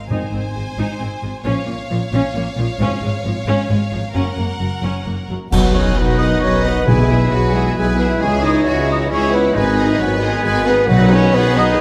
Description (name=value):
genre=cinematic, heroic adventure film score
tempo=134 BPM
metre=3/4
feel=straight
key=Ab major, B major from 5.5 s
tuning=A4 = 438 Hz
part: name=rich symphonic violin section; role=melody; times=0.0-11.8 s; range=C#5 to Ab5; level=-32 LUFS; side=equal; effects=none
part: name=clear symphonic violin section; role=second line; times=0.1-11.8 s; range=E4 to D#5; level=-31 LUFS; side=equal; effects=none
part: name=rich studio viola section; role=accompaniment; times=0.1-11.8 s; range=F3 to G#4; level=-28 LUFS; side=equal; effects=none
part: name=warm trombone section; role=sustained chords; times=0.1-11.8 s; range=Eb3 to Db4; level=-30 LUFS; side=equal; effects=none
part: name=clear symphonic cello section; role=bass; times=0.1-11.8 s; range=Gb2 to G#4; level=-27 LUFS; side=equal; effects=none
part: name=clear symphonic double bass section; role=bass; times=0.1-11.7 s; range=Gb1 to C#2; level=-23 LUFS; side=equal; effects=none
part: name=timpani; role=percussion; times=0.1-0.7, 2.8-3.4, 6.9-7.5, 10.9-11.5 s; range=Ab2 to B2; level=-23 LUFS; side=equal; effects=none
part: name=dark clarinet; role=second line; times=5.5-11.8 s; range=E4 to D#5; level=-28 LUFS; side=equal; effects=none
part: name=silver concert flute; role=second line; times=5.5-11.8 s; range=E5 to D#6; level=-28 LUFS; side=equal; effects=none
part: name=mellow French horn section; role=sustained chords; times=5.5-11.8 s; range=E3 to D#4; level=-22 LUFS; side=equal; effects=none
part: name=bright trumpet section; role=stabs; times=5.5-11.8 s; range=B4 to C#5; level=-27 LUFS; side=equal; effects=none
part: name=mellow tuba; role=bass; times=5.5-11.7 s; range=G#1 to C#2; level=-24 LUFS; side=equal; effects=none
part: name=clash cymbals and concert bass drum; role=percussion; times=5.5-6.4 s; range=none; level=-23 LUFS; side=equal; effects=none
room=wet recital hall reverb, RT60 1.7 s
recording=none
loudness=-17 LUFS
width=mono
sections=0.1-5.5 A section; 5.5-11.8 B section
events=band accent 5.5-6.0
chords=0.1 Ab; 1.5 Bbm; 2.8 Db/Ab; 4.2 Gb; 5.5 B; 6.9 E/B; 8.2 C#m; 9.6 G#m; 10.9 B